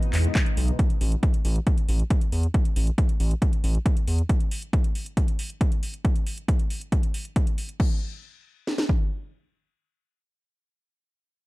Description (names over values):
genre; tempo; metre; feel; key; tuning
uplifting trance; 137 BPM; 4/4; straight; unclear; A4 = 441 Hz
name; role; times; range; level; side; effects
analog string pad; sustained chords; 0.0-0.8 s; G#2 to D#4; -34 LUFS; left 1 dB; ensemble chorus, sidechain pumping
house drum kit; drums; 0.0-7.9 s; crash cymbal, handclaps, hi-hat; -35 LUFS; equal; overdrive
gritty driven synth bass; bass; 0.1-4.2 s; A1 to E2; -22 LUFS; equal; sidechain pumping
house drum kit; drums; 0.4-9.0 s; kick drum, snare drum; -22 LUFS; equal; overdrive
room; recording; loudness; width
little or no reverb; dark, warm production; -22 LUFS; side -20 dB against mid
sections
0.0-7.8 A section; 7.8-11.3 B section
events
none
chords
0.0 E; 0.8 A5; 4.3 N.C.